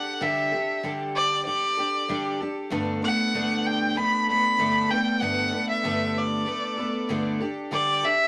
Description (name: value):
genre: rock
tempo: 96 BPM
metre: 4/4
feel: straight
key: G major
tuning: A4 = 442 Hz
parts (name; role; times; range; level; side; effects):
- rich fiddle; melody; 0.0-8.3 s; D5 to B5; -26 LUFS; equal; none
- picked twelve-string acoustic guitar; accompaniment; 0.0-8.3 s; G2 to A4; -29 LUFS; equal; none
room: wet studio reverb, RT60 0.6 s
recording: none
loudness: -25 LUFS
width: mono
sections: 0.0-8.3 A section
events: none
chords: 0.0 Dsus4; 2.7 Gadd9; 7.4 Dsus4